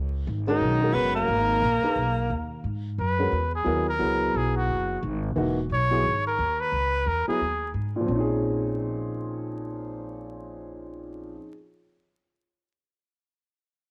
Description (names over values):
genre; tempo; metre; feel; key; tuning
modal jazz; 176 BPM; 4/4; swing 64% on 8ths; unclear; A4 = 440 Hz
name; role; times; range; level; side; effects
upright bass; bass; 0.0-11.4 s; Fb1 to Ab2; -32 LUFS; equal; transformer saturation
warm trumpet; melody; 0.5-7.7 s; Eb4 to Db5; -28 LUFS; equal; cassette tape
edgy alto saxophone; second line; 0.5-2.5 s; Eb3 to Cb4; -30 LUFS; equal; none
warm grand piano; accompaniment; 0.5-11.5 s; Bb2 to Cb5; -31 LUFS; equal; none
room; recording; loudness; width
moderate spring reverb, RT60 1.7 s; home recording on cassette, vinyl crackle; -26 LUFS; mono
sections
0.0-2.6 A section; 2.6-8.1 B section; 8.1-10.8 C section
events
trumpet solo 2.6-8.1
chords
0.0 Db9sus4; 2.6 Dbm11; 8.1 Bbm11